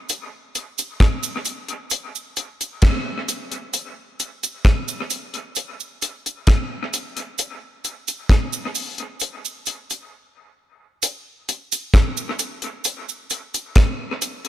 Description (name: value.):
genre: reggae.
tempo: 66 BPM.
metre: 4/4.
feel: straight.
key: none.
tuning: none.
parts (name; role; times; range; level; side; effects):
deep reggae drum kit; drums; 0.1-14.5 s; hi-hat, kick drum, rim click; -19 LUFS; equal; dub echo.
cabasa; percussion; 0.1-14.4 s; none; -28 LUFS; right 8 dB; none.
room: light reverb.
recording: dark, warm production.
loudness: -21 LUFS.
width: side -13 dB against mid.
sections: 0.0-11.0 A section; 11.0-14.5 B section.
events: break 10.1-11.0.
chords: none.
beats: | 0.10 1.01 1.92 2.83 | 3.74 4.65 5.56 6.47 | 7.38 8.29 9.20 10.12 | 11.03 11.94 12.85 13.76.